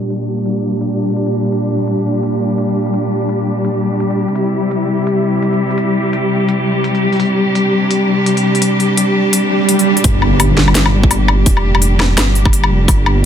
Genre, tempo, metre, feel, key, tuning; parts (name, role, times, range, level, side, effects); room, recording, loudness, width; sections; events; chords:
half-time drum and bass; 169 BPM; 4/4; swing 59% on 16ths, half-time; G dorian; A4 = 438 Hz
rich studio cello section; sustained chords; 0.0-13.3 s; Bb2 to G4; -14 LUFS; left 1 dB; sidechain pumping, low-pass filter
santur; arpeggios; 0.0-2.2 s; barely audible
drum and bass drum kit; drums; 0.0-13.1 s; hi-hat, snare drum, woodblock; -17 LUFS; left 2 dB; low-pass filter on hats, low-pass filter on perc, low-pass filter on snare, low-pass filter on toms
swell and impact; sound effects; 9.4-11.5 s; -18 LUFS; right 3 dB
dark detuned saw bass; bass; 10.0-13.3 s; F1 to G1; -13 LUFS; equal
electronic kick drum; drums; 10.0-13.0 s; -12 LUFS; equal
light reverb; dense, heavily limited modern master, low-pass filter; -12 LUFS; side -9 dB against mid
0.0-10.0 A section; 10.0-13.3 B section
filter sweep on drum 0.0-10.0; filter sweep on cello section 0.0-10.0; filter sweep 0.0-10.0; swell 9.4-10.0; drop 10.0-13.3; impact 10.0-11.5
0.0 Gm; 4.4 C; 10.0 Gm